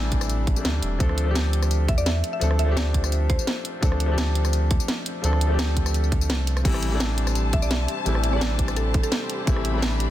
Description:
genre	liquid drum and bass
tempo	170 BPM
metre	4/4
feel	straight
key	unclear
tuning	A4 = 439 Hz
part	clear grand piano	accompaniment	0.0-10.1 s	C3 to A4	-28 LUFS	left 2 dB	dub echo
part	warm sub bass	bass	0.0-10.1 s	E1 to E2	-23 LUFS	equal	tube saturation
part	electronic kick drum	drums	0.1-9.5 s	none	-23 LUFS	equal	none
part	garage drum kit	drums	0.1-10.1 s	crash cymbal, hi-hat, rim click, snare drum, tambourine	-29 LUFS	equal	none
part	mallet-like synth pluck	melody	1.9-3.8, 7.5-9.5 s	A4 to E5	-32 LUFS	right 1 dB	chorus, dub echo
part	warm studio string section	sustained chords	6.6-10.1 s	G4 to B5	-32 LUFS	left 3 dB	none
room	digital ambience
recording	dense, heavily limited modern master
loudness	-20 LUFS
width	side -13 dB against mid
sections	0.0-10.1 A section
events	none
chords	0.0 Am7; 1.0 Dm7; 6.7 Am7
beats	0.30 0.65 | 1.00 1.36 1.71 2.06 | 2.42 2.77 3.12 3.47 | 3.83 4.18 4.53 4.88 | 5.24 5.59 5.94 6.30 | 6.65 7.00 7.36 7.71 | 8.06 8.41 8.77 9.12 | 9.47 9.83

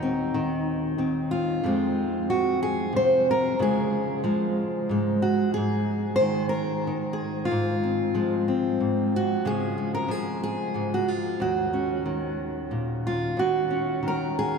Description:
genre	folk, solo fingerstyle acoustic guitar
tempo	61 BPM (dotted quarters)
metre	6/8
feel	straight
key	Eb dorian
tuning	A4 = 440 Hz
part	fingerpicked steel-string acoustic guitar	solo	0.0-14.6 s	Eb2 to C5	-23 LUFS	equal	none
room	wet cathedral reverb, RT60 6.3 s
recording	in a vast, echoing space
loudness	-23 LUFS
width	side -5 dB against mid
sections	0.0-13.4 A section; 13.4-14.6 A section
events	none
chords	0.0 Cmadd11/Eb; 1.6 Fm; 3.6 Db; 5.6 Ab5; 7.5 Fm/Ab; 9.4 Db; 11.4 Ebm7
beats	0.66 | 1.63 2.60 | 3.58 4.57 | 5.55 6.54 | 7.51 8.48 | 9.45 10.42 | 11.40 12.39 | 13.38 14.36

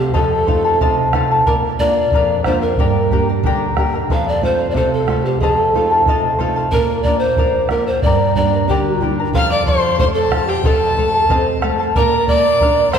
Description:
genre	andean folk, Andean ensemble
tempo	92 BPM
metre	2/4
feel	straight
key	unclear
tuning	A4 = 438 Hz
part	mellow hollow polished pan flute	melody	0.0-13.0 s	G4 to F5	-18 LUFS	equal	none
part	charango	accompaniment	0.0-13.0 s	G4 to Bb5	-20 LUFS	left 2 dB	none
part	nylon-string guitar	accompaniment	0.0-13.0 s	F2 to G4	-21 LUFS	right 3 dB	none
part	bombo	percussion	0.1-13.0 s	none	-20 LUFS	equal	none
part	rich violin	second line	9.4-13.0 s	G5 to F6	-21 LUFS	left 2 dB	none
room	wet church reverb, RT60 2.8 s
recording	recorded in a church or concert hall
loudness	-13 LUFS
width	side -7 dB against mid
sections	0.0-9.3 A section; 9.3-13.0 A section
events	none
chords	0.2 F7; 1.5 Bb; 2.8 Gm; 4.1 F; 5.4 F7; 6.7 Bb; 8.0 Gm; 9.3 F; 10.6 F7; 12.0 Bb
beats	| 0.15 0.81 | 1.47 2.12 | 2.78 3.44 | 4.09 4.75 | 5.41 6.06 | 6.72 7.37 | 8.03 8.68 | 9.34 9.99 | 10.65 11.30 | 11.96 12.61

